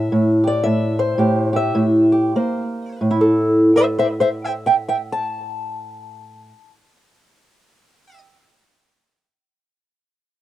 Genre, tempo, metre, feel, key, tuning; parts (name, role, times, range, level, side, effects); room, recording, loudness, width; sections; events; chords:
acoustic country blues, solo or duo; 89-119 BPM; 4/4; swing 61% on 8ths; A4 = 438 Hz
fingerpicked old ladder-braced acoustic guitar; solo; 0.0-8.2 s; A2 to A5; -16 LUFS; equal
little or no reverb; recorded outdoors, with no room sound; -16 LUFS; side -14 dB against mid
0.0-3.0 A section; 3.0-8.4 B section
slowing down 0.0-3.0; stop 0.0-2.4
0.0 A5; 2.4 Bbsus2; 3.0 A5